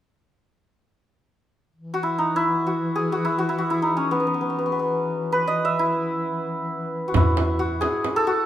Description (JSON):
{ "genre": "Persian modal ensemble", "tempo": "free time", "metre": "none", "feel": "none", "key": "E dastgah mahur", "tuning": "A4 = 439 Hz", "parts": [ { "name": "dark duduk", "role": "drone", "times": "1.8-7.2 s", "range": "E3", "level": "-30 LUFS", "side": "left 3 dB", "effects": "none" }, { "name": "santur", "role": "melody", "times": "1.9-8.5 s", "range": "B3 to E5", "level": "-22 LUFS", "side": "equal", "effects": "none" }, { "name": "upright bass", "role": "bass", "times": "7.1-7.8 s", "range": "E2", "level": "-23 LUFS", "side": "equal", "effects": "none" }, { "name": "frame drum", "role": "percussion", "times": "7.1-8.2 s", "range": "none", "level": "-27 LUFS", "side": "right 5 dB", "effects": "none" }, { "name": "tombak", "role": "percussion", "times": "7.2-8.2 s", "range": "none", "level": "-28 LUFS", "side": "left 2 dB", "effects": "none" } ], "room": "moderate recital hall reverb, RT60 1.8 s", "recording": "minimal, uncompressed stereo recording", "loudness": "-21 LUFS", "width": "side -11 dB against mid", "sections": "1.8-7.2 A section; 7.2-8.5 B section", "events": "none", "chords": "none" }